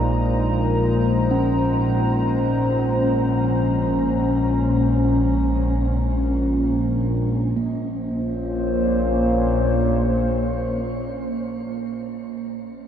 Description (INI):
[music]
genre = dark ambient drone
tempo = free time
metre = none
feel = none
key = Bb minor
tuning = A4 = 440 Hz
[part]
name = dark analog pad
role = sustained chords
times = 0.0-12.0 s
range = Bb2 to Bb5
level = -23 LUFS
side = equal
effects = wide subtle chorus, shimmer reverb
[part]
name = analog drone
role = drone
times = 0.0-11.6 s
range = Bb1 to Bb2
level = -23 LUFS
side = equal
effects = chorus, phaser
[part]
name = bronze singing bowl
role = texture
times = 0.0-7.6 s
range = none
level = barely audible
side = none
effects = none
[part]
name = bronze singing bowl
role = arpeggios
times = 1.3-11.6 s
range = Bb3 to Db4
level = -26 LUFS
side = right 1 dB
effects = tape echo, shimmer reverb
[sound]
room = wet huge ambient reverb, RT60 7.6 s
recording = none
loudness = -19 LUFS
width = side -9 dB against mid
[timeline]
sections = 0.0-7.6 A section; 7.6-11.3 B section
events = none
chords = 0.0 Absus2/Bb; 7.6 Bbm